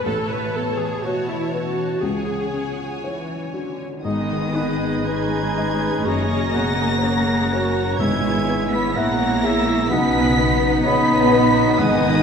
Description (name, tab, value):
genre	cinematic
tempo	61 BPM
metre	4/4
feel	uneven beats, rubato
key	G# minor from 4.0 s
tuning	A4 = 440 Hz
part	warm symphonic violin section	melody	0.0-12.2 s	C#5 to B6	-28 LUFS	equal	none
part	warm symphonic violin section	second line	0.0-12.2 s	F#4 to A5	-30 LUFS	equal	none
part	felt-muted upright piano	accompaniment	0.0-12.2 s	A1 to E5	-28 LUFS	left 2 dB	none
part	rich symphonic viola section	accompaniment	0.0-12.2 s	G#3 to B4	-26 LUFS	right 2 dB	none
part	concert harp	arpeggios	0.0-12.2 s	F#2 to E6	-28 LUFS	left 6 dB	none
part	warm symphonic cello section	bass	0.0-12.2 s	A2 to B3	-25 LUFS	right 2 dB	none
part	clear oboe	second line	4.0-12.2 s	B4 to F#5	-29 LUFS	right 2 dB	none
part	flute section	second line	4.0-12.2 s	D#5 to B5	-26 LUFS	left 2 dB	none
part	warm clarinet	second line	4.0-12.2 s	B3 to D#4	-29 LUFS	equal	none
part	warm French horn section	sustained chords	4.0-12.2 s	G#3 to E4	-27 LUFS	left 3 dB	none
part	warm symphonic double bass section	bass	4.0-12.2 s	F#1 to B1	-28 LUFS	right 3 dB	none
part	timpani	percussion	8.0-12.2 s	G#2	-28 LUFS	right 1 dB	none
room	wet scoring stage reverb, RT60 1.8 s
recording	recorded in a church or concert hall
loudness	-18 LUFS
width	side -6 dB against mid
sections	0.0-4.0 A section; 4.0-12.2 A section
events	none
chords	0.1 Aadd9; 2.0 C#sus4; 4.0 G#m; 6.1 F#sus4; 8.0 E/G#; 9.9 Badd9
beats	| 0.06 1.04 2.03 3.04 | 4.05 5.07 6.05 7.03 | 8.00 8.96 9.90 10.85 | 11.79